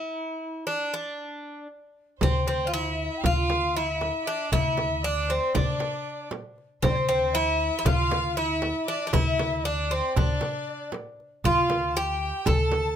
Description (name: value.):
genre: Turkish makam ensemble.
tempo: 234 BPM (eighths).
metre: 9/8.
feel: straight.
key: D makam ussak.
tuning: A4 = 440 Hz.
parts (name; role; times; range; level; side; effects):
Greek bouzouki; melody; 0.0-13.0 s; C4 to A4; -26 LUFS; right 1 dB; plate reverb.
breathy mellow ney; second line; 2.2-13.0 s; C5 to A5; -34 LUFS; left 4 dB; none.
rich chamber violin section; second line; 2.2-13.0 s; C5 to A5; -35 LUFS; left 2 dB; none.
upright bass; bass; 2.2-13.0 s; D2; -28 LUFS; equal; none.
darbuka; percussion; 2.2-12.9 s; none; -31 LUFS; left 4 dB; none.
frame drum; percussion; 2.2-12.8 s; none; -31 LUFS; right 4 dB; none.
room: light reverb.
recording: close, detailed microphones.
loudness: -23 LUFS.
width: side -9 dB against mid.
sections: 0.0-2.2 A section; 2.2-13.0 B section.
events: stop 0.0-2.2.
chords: none.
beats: 0.17 0.42 0.68 0.94 1.19 1.45 1.71 1.96 | 2.22 2.48 2.73 2.99 3.24 3.50 3.76 4.01 4.27 | 4.53 4.78 5.04 5.29 5.55 5.81 6.06 6.32 6.58 | 6.83 7.09 7.34 7.60 7.86 8.11 8.37 8.63 8.88 | 9.14 9.39 9.65 9.91 10.16 10.42 10.68 10.93 11.19 | 11.45 11.70 11.96 12.22 12.47 12.73.